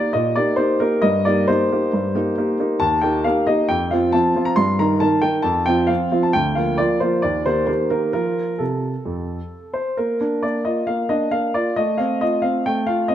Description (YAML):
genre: classical-period piano sonatina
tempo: 135 BPM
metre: 4/4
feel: straight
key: Bb major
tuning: A4 = 440 Hz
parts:
  - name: warm baby grand piano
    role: solo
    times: 0.0-13.1 s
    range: D2 to C6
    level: -17 LUFS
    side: equal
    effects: none
room: moderate recital hall reverb, RT60 1.7 s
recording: close, detailed microphones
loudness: -17 LUFS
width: side -11 dB against mid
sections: 0.0-10.0 A section; 10.0-13.1 B section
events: none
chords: 0.0 Eb; 1.0 Eb/G; 2.8 Eb; 3.7 F5; 4.6 Eb/G; 5.5 F5; 6.3 Bb/D; 7.2 Eb6; 8.1 F; 10.0 Bb; 11.8 F/A